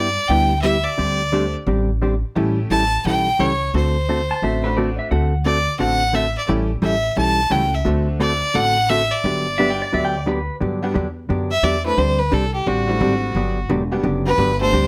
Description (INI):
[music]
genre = country, western swing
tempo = 175 BPM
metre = 4/4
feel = swing 64% on 8ths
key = G major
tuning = A4 = 437 Hz
[part]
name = clear fiddle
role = melody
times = 0.0-14.9 s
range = F#4 to A5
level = -22 LUFS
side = equal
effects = none
[part]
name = hollow-body jazz guitar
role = accompaniment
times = 0.0-14.9 s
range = D3 to A4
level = -24 LUFS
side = equal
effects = none
[part]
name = upright bass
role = bass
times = 0.0-14.9 s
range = E1 to G2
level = -25 LUFS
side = equal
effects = none
[part]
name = tack piano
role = accompaniment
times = 0.3-14.9 s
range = G3 to A4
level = -29 LUFS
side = equal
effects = none
[part]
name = clean lap steel guitar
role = second line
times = 4.3-5.4, 9.6-10.5 s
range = B4 to A5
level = -27 LUFS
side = equal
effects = none
[sound]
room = light reverb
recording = none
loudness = -19 LUFS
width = mono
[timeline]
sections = 0.0-10.6 A section; 10.6-14.9 B section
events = fiddle solo 10.6-14.9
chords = 0.0 G6; 1.0 D7sus4; 2.4 A7; 3.7 D7; 6.5 A7; 7.9 D7; 9.2 Gmaj7; 12.0 D9sus4; 13.4 Gmaj7